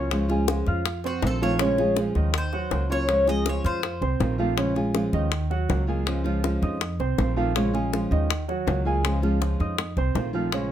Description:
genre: latin, Cuban son and guajira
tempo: 161 BPM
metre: 4/4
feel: straight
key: Bb minor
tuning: A4 = 437 Hz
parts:
  - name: Cuban tres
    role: melody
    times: 0.0-4.0 s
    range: Gb4 to Eb5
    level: -26 LUFS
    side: left 2 dB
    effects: plate reverb
  - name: nylon-string guitar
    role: accompaniment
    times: 0.0-10.7 s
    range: Db3 to F4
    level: -28 LUFS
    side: left 1 dB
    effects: none
  - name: warm baby grand piano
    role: arpeggios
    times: 0.0-10.7 s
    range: Db3 to F6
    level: -29 LUFS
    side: right 4 dB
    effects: none
  - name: upright bass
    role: bass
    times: 0.0-10.7 s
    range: Bb1 to F2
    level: -26 LUFS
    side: equal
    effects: none
  - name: bongos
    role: percussion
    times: 0.1-10.7 s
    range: none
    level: -29 LUFS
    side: left 8 dB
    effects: none
room: light reverb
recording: close, detailed microphones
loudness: -22 LUFS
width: side -11 dB against mid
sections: 0.0-4.6 A section; 4.6-10.7 B section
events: Cuban tres solo 0.0-4.6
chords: 0.1 Db; 0.9 F7; 1.6 Bbm7; 2.3 Ebmadd9; 3.1 Db; 3.8 F7; 4.6 Bbm7; 5.3 Ebmadd9; 6.1 Db; 6.8 F7; 7.6 Bbm7; 8.3 Ebmadd9; 9.0 Db; 9.8 F7

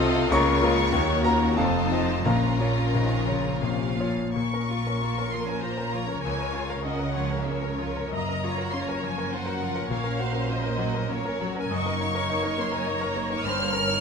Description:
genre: classical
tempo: 76-108 BPM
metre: 3/4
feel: rubato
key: Bb minor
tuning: A4 = 443 Hz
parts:
  - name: clear concert grand piano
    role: melody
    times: 0.0-14.0 s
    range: F1 to Eb6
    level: -27 LUFS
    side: left 3 dB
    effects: none
  - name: warm symphonic violin section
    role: melody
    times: 0.0-14.0 s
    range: Db5 to F6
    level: -32 LUFS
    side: left 1 dB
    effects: none
  - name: warm symphonic violin section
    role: second line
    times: 0.0-14.0 s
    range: G3 to Eb5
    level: -33 LUFS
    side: left 2 dB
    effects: none
  - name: warm symphonic viola section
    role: accompaniment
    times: 0.0-14.0 s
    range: Gb3 to Eb5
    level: -33 LUFS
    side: equal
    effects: none
  - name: warm French horn section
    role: sustained chords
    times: 0.0-3.9 s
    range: A3 to Gb4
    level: -31 LUFS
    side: left 5 dB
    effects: none
  - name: warm symphonic cello section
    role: bass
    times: 0.0-14.0 s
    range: Eb2 to Eb3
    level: -33 LUFS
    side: right 3 dB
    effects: none
  - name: warm symphonic double bass section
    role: bass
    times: 0.0-14.0 s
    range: F1 to Eb2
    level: -34 LUFS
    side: right 5 dB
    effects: none
  - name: timpani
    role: percussion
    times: 2.3-3.2 s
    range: Bb2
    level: -30 LUFS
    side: left 1 dB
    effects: none
room: moderate concert hall reverb, RT60 1.9 s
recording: close, detailed microphones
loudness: -23 LUFS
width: side -6 dB against mid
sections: 0.0-4.3 A section; 4.3-14.0 A section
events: none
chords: 0.3 Bbm/Db; 0.9 Ebm7; 1.6 F7; 2.3 Bbm; 6.2 Bbm/Db; 8.1 Gbmaj7; 9.9 Gb/Bb; 11.7 Ebm/Gb; 13.5 Eb7/G (rootless)

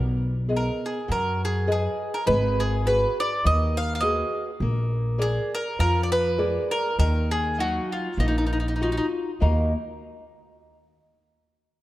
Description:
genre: italian folk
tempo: 101 BPM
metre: 4/4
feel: swing 55% on 8ths, rubato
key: Eb harmonic minor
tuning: A4 = 441 Hz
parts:
  - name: nylon-string guitar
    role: accompaniment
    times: 0.0-9.7 s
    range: Eb3 to Bb5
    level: -29 LUFS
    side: left 1 dB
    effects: none
  - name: upright bass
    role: bass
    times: 0.0-9.7 s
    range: Ab1 to F#2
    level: -24 LUFS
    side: equal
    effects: none
  - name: bowl-back mandolin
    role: melody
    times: 0.6-9.1 s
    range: Eb4 to F5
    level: -25 LUFS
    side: right 1 dB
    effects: none
room: light reverb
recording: dark, warm production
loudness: -22 LUFS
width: side -16 dB against mid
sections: 0.0-9.4 A section; 9.4-11.8 B section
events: none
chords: 0.0 B6; 2.3 Abm7; 4.6 Bb7; 7.0 Ebmadd9

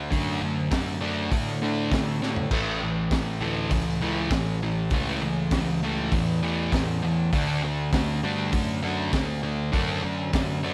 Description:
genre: garage rock duo or trio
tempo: 100 BPM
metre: 4/4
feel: straight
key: unclear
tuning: A4 = 441 Hz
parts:
  - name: fuzz guitar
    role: riff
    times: 0.0-10.7 s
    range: A2 to D4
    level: -29 LUFS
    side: equal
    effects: distortion
  - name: fuzz picked electric bass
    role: bass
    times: 0.0-10.7 s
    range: A1 to A2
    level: -33 LUFS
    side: equal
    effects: overdrive
  - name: crunchy breakbeat drum kit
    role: drums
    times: 0.1-10.5 s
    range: crash cymbal, hi-hat, kick drum, snare drum, toms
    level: -31 LUFS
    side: equal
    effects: none
room: light reverb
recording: none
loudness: -26 LUFS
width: mono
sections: 0.0-10.7 A section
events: drum fill 2.2-2.5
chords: 0.0 D; 2.5 A; 7.3 D

